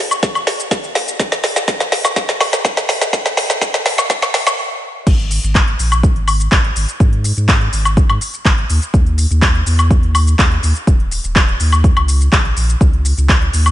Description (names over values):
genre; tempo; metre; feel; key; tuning
progressive house; 124 BPM; 4/4; straight; unclear; A4 = 439 Hz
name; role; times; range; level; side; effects
saturated sub bass; bass; 0.0-13.7 s; D#1 to G#2; -15 LUFS; equal; sidechain pumping, high-pass filter
deep house drum kit; drums; 0.1-13.7 s; crash cymbal, handclaps, hi-hat, shaker, snare drum, woodblock; -16 LUFS; equal; high-pass filter on hats, studio reverb, high-pass filter on perc, high-pass filter on snare, high-pass filter on cymbals
electronic kick drum; drums; 0.2-13.4 s; none; -14 LUFS; equal; studio reverb
room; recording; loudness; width
light reverb; high-pass filter, nothing above 10.6 kHz; -12 LUFS; side -14 dB against mid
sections
0.0-5.1 A section; 5.1-13.7 B section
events
build-up 0.0-5.1; drum fill 0.0-4.6; stop 4.6-5.1; drop 5.1-13.7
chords
none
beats
0.23 0.71 | 1.20 1.68 2.16 2.65 | 3.13 3.62 4.10 4.58 | 5.07 5.55 6.04 6.52 | 7.00 7.49 7.97 8.45 | 8.94 9.42 9.91 10.39 | 10.87 11.36 11.84 12.32 | 12.81 13.29